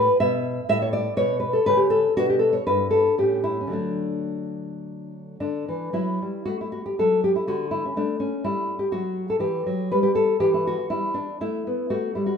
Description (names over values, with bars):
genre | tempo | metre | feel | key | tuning
classical, baroque-style dance for nylon-string guitar | 104-124 BPM | 3/4 | rubato | D major | A4 = 442 Hz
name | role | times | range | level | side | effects
nylon-string guitar | solo | 0.0-12.4 s | G2 to E5 | -21 LUFS | left 1 dB | none
room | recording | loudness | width
moderate recital hall reverb, RT60 1.6 s | minimal, uncompressed stereo recording | -21 LUFS | side -6 dB against mid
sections
0.0-5.4 A section; 5.4-12.4 B section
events
none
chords
0.0 E5; 0.7 A; 2.2 Bm; 2.7 Em/G; 3.2 A7; 3.7 D; 8.4 Em; 11.4 A5